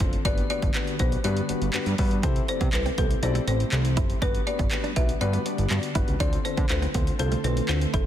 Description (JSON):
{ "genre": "dance-pop", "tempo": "121 BPM", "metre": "4/4", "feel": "straight", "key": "G major", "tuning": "A4 = 438 Hz", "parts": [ { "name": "folk marimba with hard mallets", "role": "melody", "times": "0.0-8.1 s", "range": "A4 to E5", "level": "-32 LUFS", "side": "left 2 dB", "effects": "digital delay" }, { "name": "dark grand piano", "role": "accompaniment", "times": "0.0-8.1 s", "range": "B3 to D5", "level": "-32 LUFS", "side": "left 6 dB", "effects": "sidechain pumping" }, { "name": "ethereal airy pad", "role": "sustained chords", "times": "0.0-8.1 s", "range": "D3 to G4", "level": "-35 LUFS", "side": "right 1 dB", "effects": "ensemble chorus, built-in reverb, sidechain pumping" }, { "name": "fat analog bass", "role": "bass", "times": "0.0-8.1 s", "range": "F#1 to D3", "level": "-26 LUFS", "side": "equal", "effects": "sidechain pumping" }, { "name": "punchy analog drum machine", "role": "drums", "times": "0.0-8.1 s", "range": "handclaps, hi-hat, kick drum", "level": "-26 LUFS", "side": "equal", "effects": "none" }, { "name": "direct-recorded clean electric guitar", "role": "riff", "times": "2.2-8.0 s", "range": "A3 to E4", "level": "-35 LUFS", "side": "right 6 dB", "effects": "analog chorus" } ], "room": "digital ambience", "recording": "dense, heavily limited modern master", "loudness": "-22 LUFS", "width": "side -11 dB against mid", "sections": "0.0-8.1 A section", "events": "none", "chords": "0.3 Gmaj7; 2.2 C6; 4.2 Gmaj7; 6.2 Dm7", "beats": "| 0.25 0.75 1.24 1.74 | 2.23 2.73 3.23 3.72 | 4.22 4.71 5.21 5.71 | 6.20 6.70 7.19 7.69" }